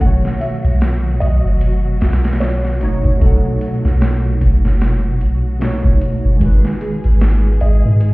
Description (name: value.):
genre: trip hop.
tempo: 75 BPM.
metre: 4/4.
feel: swing 58% on 16ths.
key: unclear.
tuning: A4 = 440 Hz.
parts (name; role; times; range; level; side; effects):
felt-muted upright piano; melody; 0.0-8.1 s; A4 to F#5; -28 LUFS; right 1 dB; vintage 12-bit sampler grit, tape echo.
barky tine electric piano; accompaniment; 0.0-8.1 s; B2 to F#5; -21 LUFS; right 1 dB; medium stereo tremolo, harmonic tremolo, tape echo.
warm studio string section; sustained chords; 0.0-8.1 s; F#3 to G#4; -29 LUFS; left 2 dB; none.
soft 808-style bass; bass; 0.0-8.1 s; F#1 to G#2; -14 LUFS; equal; none.
boom bap sampler-style drum kit; drums; 0.0-8.1 s; hi-hat, kick drum, snare drum; -19 LUFS; equal; none.
celesta; arpeggios; 6.4-8.1 s; D#4 to B4; -28 LUFS; right 1 dB; tape echo.
room: small room ambience.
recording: heard muffled through a wall, stone room reverb, EQ.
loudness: -13 LUFS.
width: side -22 dB against mid.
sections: 0.0-8.1 A section.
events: none.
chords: 0.0 B9; 6.4 G#m7.